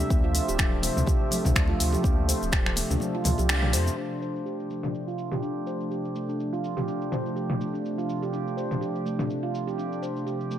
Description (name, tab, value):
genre	afro house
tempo	124 BPM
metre	4/4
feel	swing 56% on 16ths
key	D minor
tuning	A4 = 440 Hz
part	warm analog pad	sustained chords	0.0-10.6 s	C3 to E5	-32 LUFS	right 1 dB	chorus, vintage 12-bit sampler grit, sidechain pumping
part	handpan	arpeggios	0.0-10.6 s	A3 to C5	-31 LUFS	right 1 dB	sidechain pumping, low-pass filter, dub echo
part	warm sub bass	bass	0.0-3.9 s	D1 to F2	-27 LUFS	equal	sidechain pumping
part	deep house drum kit	drums	0.0-10.6 s	cabasa, finger snaps, hi-hat, toms	-28 LUFS	left 1 dB	low-pass filter on hats, low-pass filter on perc, low-pass filter on snare, low-pass filter on toms, low-pass filter on room
part	congas	percussion	0.0-4.0 s	none	-35 LUFS	left 3 dB	none
part	electronic kick drum	drums	0.1-2.6 s	none	-25 LUFS	equal	none
room	light reverb, digital ambience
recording	none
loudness	-24 LUFS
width	side -10 dB against mid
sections	0.0-4.0 A section; 4.0-10.6 B section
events	kick drops out 3.0-4.0; band accent 3.5; filter sweep on handpan 4.0-10.6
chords	0.1 Fmaj7/D; 4.0 Dm7